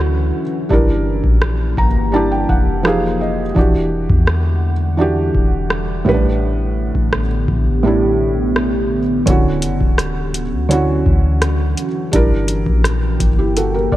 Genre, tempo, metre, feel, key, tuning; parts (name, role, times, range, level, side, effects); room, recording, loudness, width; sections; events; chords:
contemporary R&B; 84 BPM; 4/4; straight; D major; A4 = 441 Hz
felt-muted upright piano; accompaniment; 0.0-14.0 s; A2 to Bb5; -19 LUFS; right 2 dB
deep dark ambient pad; sustained chords; 0.0-14.0 s; D3 to G5; -22 LUFS; left 1 dB; chorus, built-in reverb
soft 808-style bass; bass; 0.0-14.0 s; D1 to E2; -19 LUFS; equal
booming analog drum machine; drums; 0.7-14.0 s; hi-hat, kick drum, rim click; -17 LUFS; equal
digital ambience; worn, warbling old tape, cassette tape, warbly pitch drift; -14 LUFS; side -14 dB against mid
0.0-14.0 A section
break 0.0-9.3; felt piano fill 1.4-3.6
0.0 Dmaj9; 0.7 Gm6; 2.8 Fm9; 3.6 Em9; 6.1 A9sus4; 9.3 Dmaj9; 12.1 Gm6